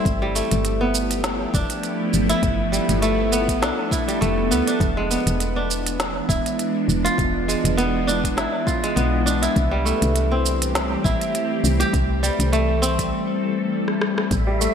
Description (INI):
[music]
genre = organic downtempo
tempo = 101 BPM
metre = 4/4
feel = swing 55% on 16ths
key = unclear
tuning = A4 = 440 Hz
[part]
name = bowed-like drone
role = sustained chords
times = 0.0-14.7 s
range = E3 to A4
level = -24 LUFS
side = equal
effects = built-in reverb, phaser, sidechain pumping
[part]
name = kora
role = arpeggios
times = 0.0-14.7 s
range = G3 to G4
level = -23 LUFS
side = equal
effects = low-pass filter, ping-pong delay
[part]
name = woody FM bass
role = bass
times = 0.1-14.7 s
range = D1 to D2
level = -23 LUFS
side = equal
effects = tube saturation, sidechain pumping
[part]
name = electronic kick drum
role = drums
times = 0.1-14.4 s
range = none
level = -25 LUFS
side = equal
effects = none
[part]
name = organic electronic drum kit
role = drums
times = 0.1-14.7 s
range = hi-hat, rim click, shaker, snare drum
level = -27 LUFS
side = right 2 dB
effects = gated reverb
[part]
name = wind-like tuned noise texture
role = texture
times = 14.4-14.7 s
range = E5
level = -28 LUFS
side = right 3 dB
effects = built-in reverb, wide subtle chorus
[sound]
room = moderate lush hall reverb, RT60 2.6 s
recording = bright 1980s-style digital production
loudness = -18 LUFS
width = side -7 dB against mid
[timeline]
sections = 0.0-14.3 A section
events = break 13.1-14.3; drum fill 13.9-14.3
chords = 0.1 G13; 4.8 E7b9; 9.6 C6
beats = | 0.06 0.65 1.25 1.84 | 2.43 3.03 3.62 4.22 | 4.81 5.40 6.00 6.59 | 7.19 7.78 8.38 8.97 | 9.56 10.16 10.75 11.35 | 11.94 12.53 13.13 13.72 | 14.31